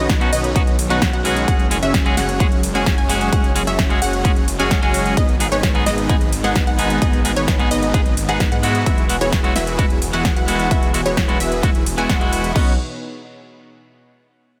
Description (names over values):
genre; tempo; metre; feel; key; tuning
EDM, festival progressive house; 130 BPM; 4/4; straight; B major; A4 = 438 Hz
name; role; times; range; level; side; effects
lush unison pad; sustained chords; 0.0-12.8 s; B2 to C#5; -31 LUFS; equal; none
unison pluck; arpeggios; 0.0-12.7 s; C#5 to G#5; -29 LUFS; equal; sidechain pumping, tape echo
dense compressed supersaw; riff; 0.0-12.7 s; B3 to G#5; -27 LUFS; equal; sidechain pumping, tape echo
detuned saw bass; bass; 0.0-12.8 s; E1 to G#2; -27 LUFS; equal; chorus, sidechain pumping
big-room dance drum kit; drums; 0.1-12.6 s; crash cymbal, hi-hat, ride cymbal, snare drum; -27 LUFS; equal; none
electronic kick drum; drums; 0.1-12.6 s; none; -20 LUFS; equal; none
clean electric guitar; accompaniment; 0.2-12.7 s; G#2 to G#4; -25 LUFS; equal; sidechain pumping, tape echo
room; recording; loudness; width
little or no reverb; none; -17 LUFS; mono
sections
0.0-12.6 A section; 12.6-14.4 B section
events
drop 0.0-12.6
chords
0.0 Badd9; 1.5 F#sus2; 5.2 G#m; 8.9 Eadd9; 12.6 Badd9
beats
0.10 0.56 1.02 | 1.48 1.94 2.40 2.86 | 3.33 3.79 4.25 4.71 | 5.17 5.63 6.09 6.56 | 7.02 7.48 7.94 8.40 | 8.86 9.33 9.79 10.25 | 10.71 11.17 11.63 12.10 | 12.56